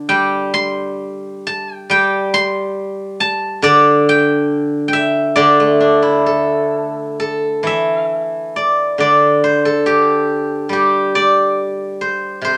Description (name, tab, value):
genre	chinese traditional, Chinese solo plucked strings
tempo	68 BPM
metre	2/4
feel	uneven beats, rubato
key	D shang mode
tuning	A4 = 440 Hz
part	steel-string zither	solo	0.0-12.6 s	C3 to C6	-16 LUFS	equal	none
room	moderate studio reverb, RT60 0.6 s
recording	none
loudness	-15 LUFS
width	mono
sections	0.0-7.2 A section; 7.2-12.6 B section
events	none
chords	none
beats	| 0.10 1.03 | 1.92 2.79 | 3.66 4.52 | 5.37 6.27 | 7.19 8.11 | 9.00 9.87 | 10.72 11.58 | 12.45